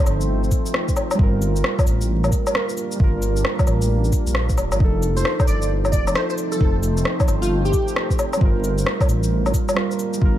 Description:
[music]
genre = future garage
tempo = 133 BPM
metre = 4/4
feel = swing 64% on 16ths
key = G minor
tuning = A4 = 441 Hz
[part]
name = muted felt-like synth keys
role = accompaniment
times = 0.0-10.4 s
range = F3 to Bb4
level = -26 LUFS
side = right 3 dB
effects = chorus, sidechain pumping, digital delay
[part]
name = deep dark ambient pad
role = sustained chords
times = 0.0-10.4 s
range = G3 to C5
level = -29 LUFS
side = left 1 dB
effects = chorus, built-in reverb, vintage 12-bit sampler grit, sidechain pumping
[part]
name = dark detuned saw bass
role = bass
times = 0.1-10.4 s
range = D1 to Bb1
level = -21 LUFS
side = equal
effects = tube saturation, sidechain pumping
[part]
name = electronic cabasa, woodblock, shaker and rim click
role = drums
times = 0.1-10.2 s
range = none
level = -24 LUFS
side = left 1 dB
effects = none
[part]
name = electronic kick drum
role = drums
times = 0.5-10.3 s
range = none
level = -19 LUFS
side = equal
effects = none
[part]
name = plucky unison lead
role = melody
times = 5.2-8.1 s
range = F4 to D5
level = -26 LUFS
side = left 1 dB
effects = analog chorus, cassette tape, tape echo
[sound]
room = light reverb, digital ambience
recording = vinyl crackle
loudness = -17 LUFS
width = side -12 dB against mid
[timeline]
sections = 0.0-10.4 A section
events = none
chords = 0.0 F7; 1.2 Gm7; 4.8 F7; 8.4 Gm7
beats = 0.29 0.74 | 1.19 1.64 2.09 2.54 | 3.00 3.45 3.90 4.35 | 4.80 5.25 5.70 6.15 | 6.60 7.05 7.51 7.96 | 8.41 8.86 9.31 9.76 | 10.21

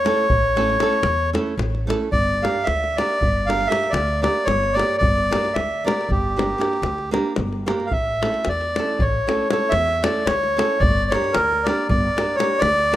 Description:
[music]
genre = balkan folk, Balkan wedding band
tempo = 228 BPM (eighths)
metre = 11/8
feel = straight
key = G dorian sharp4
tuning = A4 = 438 Hz
[part]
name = accordion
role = melody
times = 0.0-13.0 s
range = G4 to F5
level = -20 LUFS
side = equal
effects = none
[part]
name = nylon-string guitar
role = accompaniment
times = 0.0-13.0 s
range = A3 to Bb4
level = -26 LUFS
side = right 3 dB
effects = none
[part]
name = upright bass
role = bass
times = 0.0-12.9 s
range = G1 to E2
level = -26 LUFS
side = equal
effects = none
[part]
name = davul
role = percussion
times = 0.1-13.0 s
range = none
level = -24 LUFS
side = left 2 dB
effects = none
[sound]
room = light reverb, small room ambience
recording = rough home demo mix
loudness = -18 LUFS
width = side -13 dB against mid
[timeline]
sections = 0.0-7.9 A section; 7.9-13.0 B section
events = none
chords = 0.0 A; 2.1 Gm; 7.9 A; 10.8 Gm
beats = 0.01 0.28 0.54 0.80 1.07 1.33 1.59 1.86 | 2.12 2.39 2.65 2.91 3.18 3.44 3.71 3.97 4.23 4.50 4.76 | 5.02 5.29 5.55 5.82 6.08 6.34 6.61 6.87 7.13 7.40 7.66 | 7.92 8.19 8.45 8.71 8.98 9.24 9.50 9.77 10.03 10.29 10.56 | 10.82 11.08 11.35 11.61 11.87 12.14 12.40 12.66 12.93

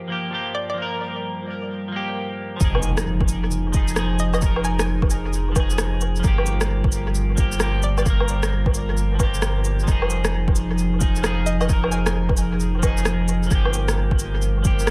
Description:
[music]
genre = future garage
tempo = 132 BPM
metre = 4/4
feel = swing 64% on 16ths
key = F minor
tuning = A4 = 440 Hz
[part]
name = clean electric guitar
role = accompaniment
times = 0.0-14.9 s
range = F3 to Bb4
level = -31 LUFS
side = equal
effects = analog chorus, sidechain pumping, tape echo
[part]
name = warbly tape-like pad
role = sustained chords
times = 0.0-14.9 s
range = G2 to Bb4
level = -31 LUFS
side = equal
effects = chorus, built-in reverb, sidechain pumping
[part]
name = hollow square pluck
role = melody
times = 0.5-0.8, 4.2-4.8, 7.8-8.0, 11.5-12.1 s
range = D5 to Ab5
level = -35 LUFS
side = equal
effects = chorus, dub echo
[part]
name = soft dub sub bass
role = bass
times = 2.6-14.9 s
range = F1 to G1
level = -25 LUFS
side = equal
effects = tube saturation, sidechain pumping
[part]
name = electronic kick drum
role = drums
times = 2.6-14.8 s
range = none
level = -23 LUFS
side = equal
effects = overdrive
[part]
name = electronic shaker, woodblock, cabasa and rim click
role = drums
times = 2.6-14.9 s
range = none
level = -29 LUFS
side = equal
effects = dub echo
[part]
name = impact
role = sound effects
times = 2.7-4.4 s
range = none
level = -32 LUFS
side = equal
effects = none
[sound]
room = light reverb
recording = echo-heavy mix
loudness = -21 LUFS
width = mono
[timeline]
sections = 0.0-2.6 A section; 2.6-14.9 B section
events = filter sweep on ambient pad 0.0-2.6; impact 2.6-4.4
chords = 0.0 Gm7; 2.6 Fm7; 6.2 Gm7; 9.9 Fm7; 13.5 Gm7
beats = 0.33 | 0.78 1.24 1.69 2.15 | 2.60 3.06 3.51 3.97 | 4.42 4.88 5.33 5.78 | 6.24 6.69 7.15 7.60 | 8.06 8.51 8.97 9.42 | 9.88 10.33 10.78 11.24 | 11.69 12.15 12.60 13.06 | 13.51 13.97 14.42 14.88

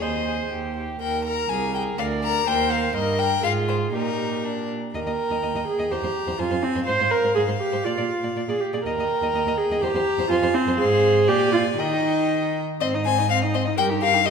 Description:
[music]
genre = quick classical-period movement for string quartet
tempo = 123 BPM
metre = 2/4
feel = straight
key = Eb major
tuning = A4 = 440 Hz
[part]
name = rich violin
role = melody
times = 0.0-14.3 s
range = Bb4 to Bb5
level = -26 LUFS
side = left 9 dB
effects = none
[part]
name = rich violin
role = second line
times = 0.0-14.3 s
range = D4 to Eb5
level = -29 LUFS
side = left 3 dB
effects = none
[part]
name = warm viola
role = accompaniment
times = 0.0-14.3 s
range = C4 to D5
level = -23 LUFS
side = right 2 dB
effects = none
[part]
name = rich cello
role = bass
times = 0.0-14.3 s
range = C2 to Eb3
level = -28 LUFS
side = right 4 dB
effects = none
[sound]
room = moderate scoring stage reverb, RT60 2.0 s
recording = minimal, uncompressed stereo recording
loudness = -20 LUFS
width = side -6 dB against mid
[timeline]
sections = 0.0-5.0 A section; 5.0-12.8 B section; 12.8-14.3 A section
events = none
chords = 0.0 Ab/Eb; 0.5 Eb; 1.5 Ab/C; 2.0 Bb/D; 2.5 Eb; 2.9 Eb/G; 3.4 Fm/Ab; 3.9 Eb/Bb; 5.0 Eb; 5.9 C7/E; 6.4 Fm; 6.9 Fm/Ab; 7.9 Bb; 8.9 Eb; 9.8 C7/E (rootless); 10.3 Fm; 10.8 Fm/Ab; 11.3 Bb7; 11.8 Eb; 12.8 Ab; 13.8 Eb/G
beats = | 0.01 0.51 | 1.00 1.50 | 1.99 2.47 | 2.94 3.43 | 3.94 4.45 | 4.95 5.43 | 5.92 6.39 | 6.87 7.36 | 7.85 8.35 | 8.85 9.34 | 9.82 10.30 | 10.78 11.28 | 11.78 12.30 | 12.81 13.30 | 13.79 14.27

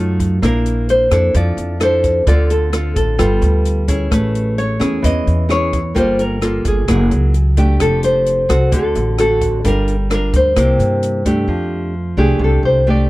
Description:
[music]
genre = bossa nova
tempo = 130 BPM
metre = 4/4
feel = straight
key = F major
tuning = A4 = 440 Hz
[part]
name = nylon-string guitar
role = accompaniment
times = 0.0-13.1 s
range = C3 to Bb4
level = -19 LUFS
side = equal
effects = none
[part]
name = upright bass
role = bass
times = 0.0-13.1 s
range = F1 to G2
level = -16 LUFS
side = equal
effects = none
[part]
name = open jazz drum kit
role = drums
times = 0.2-11.4 s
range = hi-hat, kick drum, rim click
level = -22 LUFS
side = equal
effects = none
[part]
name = nylon-string guitar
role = melody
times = 0.4-13.1 s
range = Ab4 to Eb5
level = -18 LUFS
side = equal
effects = none
[sound]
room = little or no reverb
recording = dry, close 1970s-style studio recording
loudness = -13 LUFS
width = side -18 dB against mid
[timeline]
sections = 0.0-11.5 A section; 11.5-13.1 B section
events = nylon-string guitar solo 11.5-13.1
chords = 0.4 Bbmaj9#11; 2.3 Dm7; 3.2 G9; 4.1 Amaj7; 6.0 Gm9; 6.9 Gb9; 7.8 F69; 8.7 D7; 9.6 Gm7; 10.6 C7; 11.5 F69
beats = | 0.42 0.88 1.34 1.80 | 2.26 2.73 3.19 3.65 | 4.11 4.57 5.03 5.49 | 5.95 6.42 6.88 7.34 | 7.80 8.26 8.72 9.18 | 9.64 10.10 10.56 11.02 | 11.48 11.95 12.41 12.87

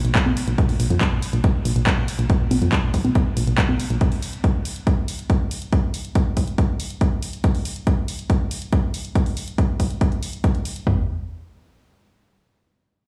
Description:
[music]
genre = uplifting trance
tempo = 140 BPM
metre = 4/4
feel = straight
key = unclear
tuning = A4 = 440 Hz
[part]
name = solid FM bass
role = bass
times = 0.0-4.0 s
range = Bb1 to F2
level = -23 LUFS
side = equal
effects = sidechain pumping
[part]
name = punchy analog drum machine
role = drums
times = 0.0-10.8 s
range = congas, handclaps, hi-hat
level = -30 LUFS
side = equal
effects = sidechain pumping on hats, sidechain pumping on perc, sidechain pumping on cymbals
[part]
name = punchy analog drum machine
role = drums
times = 0.2-11.0 s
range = kick drum, toms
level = -22 LUFS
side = equal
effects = none
[sound]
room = little or no reverb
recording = played on a big sound system in a bare room, large studio reverb, studio ambience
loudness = -21 LUFS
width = mono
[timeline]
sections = 0.0-10.9 A section; 10.9-13.1 B section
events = none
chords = none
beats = 0.15 | 0.58 1.01 1.44 1.87 | 2.30 2.73 3.15 3.58 | 4.01 4.44 4.87 5.30 | 5.72 6.15 6.58 7.01 | 7.44 7.87 8.30 8.72 | 9.15 9.58 10.01 10.44 | 10.87

